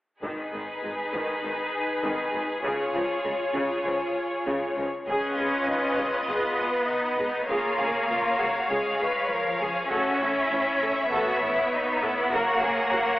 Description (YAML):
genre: cinematic, epic orchestral film score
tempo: 100 BPM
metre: 4/4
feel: straight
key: G# dorian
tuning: A4 = 440 Hz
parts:
  - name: rich symphonic violin section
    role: second line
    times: 0.2-13.2 s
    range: D#4 to C#5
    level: -29 LUFS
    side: left 1 dB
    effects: none
  - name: rich symphonic viola section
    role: accompaniment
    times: 0.2-13.2 s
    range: C#3 to C#5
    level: -29 LUFS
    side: equal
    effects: none
  - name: rich symphonic double bass section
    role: bass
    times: 0.2-13.0 s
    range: F#1 to C#2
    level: -41 LUFS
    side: equal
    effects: none
  - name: warm symphonic cello section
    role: bass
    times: 0.2-13.2 s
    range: G#2 to C#4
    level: -28 LUFS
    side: equal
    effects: none
  - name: taiko ensemble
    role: drums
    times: 0.2-1.4, 5.1-6.3, 9.9-11.1 s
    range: none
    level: -52 LUFS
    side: equal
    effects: none
  - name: rich studio violin section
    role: melody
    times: 5.1-13.2 s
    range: D#5 to F#5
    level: -31 LUFS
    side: left 1 dB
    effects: none
room: wet scoring stage reverb, RT60 1.9 s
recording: telephone sound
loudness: -24 LUFS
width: side -16 dB against mid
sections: 0.2-5.1 A section; 5.1-13.2 B section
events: none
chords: 0.2 G#m; 2.6 C#; 5.1 G#m; 7.5 C#; 9.9 A; 12.3 F#